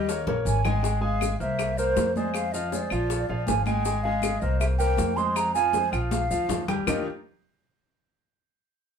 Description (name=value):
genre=Afro-Cuban jazz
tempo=159 BPM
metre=4/4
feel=straight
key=Eb major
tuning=A4 = 440 Hz
part: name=mellow hollow concert flute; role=melody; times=0.0-7.0 s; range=C5 to C6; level=-28 LUFS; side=right 2 dB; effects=none
part: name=clear concert grand piano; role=accompaniment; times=0.0-7.1 s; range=Eb3 to Ab5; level=-29 LUFS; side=left 1 dB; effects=none
part: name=upright bass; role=bass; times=0.0-7.0 s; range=Ab1 to F2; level=-28 LUFS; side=equal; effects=none
part: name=bongos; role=percussion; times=0.1-7.0 s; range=none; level=-34 LUFS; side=left 7 dB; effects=none
part: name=maracas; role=percussion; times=0.1-7.0 s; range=none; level=-39 LUFS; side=left 5 dB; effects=none
part: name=congas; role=percussion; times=0.3-7.0 s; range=none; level=-34 LUFS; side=right 2 dB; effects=none
part: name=claves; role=percussion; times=0.6-7.0 s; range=none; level=-34 LUFS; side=left 1 dB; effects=none
room=moderate studio reverb, RT60 0.5 s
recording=band playing live in one room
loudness=-23 LUFS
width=side -7 dB against mid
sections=0.8-6.9 A section; 6.9-8.4 B section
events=drum fill 0.0-0.8, 6.1-6.9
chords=0.1 Eb5; 0.8 Ab; 1.6 Caug7; 2.3 Fm; 3.1 Bb7; 3.9 Ab; 4.6 C5; 5.4 Fm; 6.1 Bb; 6.9 Ebmaj9